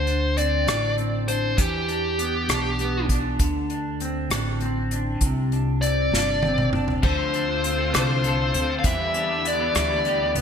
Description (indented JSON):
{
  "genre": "six-eight pop ballad",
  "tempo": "66 BPM (dotted quarters)",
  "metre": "6/8",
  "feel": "straight",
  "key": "D dorian",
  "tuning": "A4 = 440 Hz",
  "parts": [
    { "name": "bluesy overdriven lead guitar", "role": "melody", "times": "0.0-3.1, 5.8-10.3 s", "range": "G4 to F5", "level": "-24 LUFS", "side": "left 1 dB", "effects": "distortion, digital delay" },
    { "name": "clean electric guitar", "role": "accompaniment", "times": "0.0-10.4 s", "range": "C3 to A4", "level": "-28 LUFS", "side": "equal", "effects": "double-tracked left and right" },
    { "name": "upright bass", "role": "bass", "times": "0.0-10.4 s", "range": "G1 to E2", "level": "-27 LUFS", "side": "equal", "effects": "none" },
    { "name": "unplugged drum kit", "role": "drums", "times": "0.1-10.4 s", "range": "crash cymbal, hi-hat, kick drum, rim click, snare drum, toms", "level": "-26 LUFS", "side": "equal", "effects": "gated reverb" },
    { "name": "warm studio string section", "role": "sustained chords", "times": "7.0-10.4 s", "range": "D3 to F4", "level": "-31 LUFS", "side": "left 2 dB", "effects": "none" },
    { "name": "twelve-string electric guitar", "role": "arpeggios", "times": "7.0-10.4 s", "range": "D3 to A4", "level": "-32 LUFS", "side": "left 4 dB", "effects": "wide subtle chorus" }
  ],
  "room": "moderate lush hall reverb, RT60 2.1 s",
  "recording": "bright 1980s-style digital production",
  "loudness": "-20 LUFS",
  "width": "side -7 dB against mid",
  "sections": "0.0-7.0 A section; 7.0-10.4 B section",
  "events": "drum fill 6.1-7.0",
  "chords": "0.0 D5; 1.6 Em7; 3.4 D5; 5.2 Csus2; 7.0 Dm7; 8.8 Em7",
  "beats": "0.68 | 1.59 2.50 | 3.40 4.31 | 5.22 6.13 | 7.03 7.94 | 8.85 9.75"
}